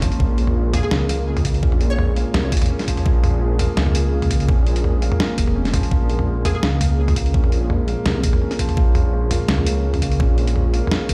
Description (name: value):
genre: half-time drum and bass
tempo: 168 BPM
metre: 4/4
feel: half-time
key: unclear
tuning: A4 = 440 Hz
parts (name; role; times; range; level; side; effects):
- deep dark ambient pad; sustained chords; 0.0-11.1 s; Bb3 to Db5; -33 LUFS; equal; chorus, built-in reverb, sidechain pumping
- felt-muted upright piano; arpeggios; 0.0-11.1 s; F3 to Bb4; -30 LUFS; equal; vintage 12-bit sampler grit, dub echo
- dark detuned saw bass; bass; 0.0-11.1 s; F1 to Db2; -22 LUFS; equal; none
- boom bap sampler-style drum kit; drums; 0.0-11.1 s; hi-hat, snare drum, toms; -25 LUFS; equal; none
- electronic kick drum; drums; 0.0-11.1 s; none; -21 LUFS; equal; overdrive
- hollow square pluck; melody; 0.7-2.3, 6.5-6.6 s; Ab4 to Db5; -33 LUFS; equal; ensemble chorus, tape echo
room: little or no reverb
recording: played on a big sound system in a bare room, stone room reverb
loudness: -19 LUFS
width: mono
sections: 0.0-11.1 A section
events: none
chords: 0.0 Bbm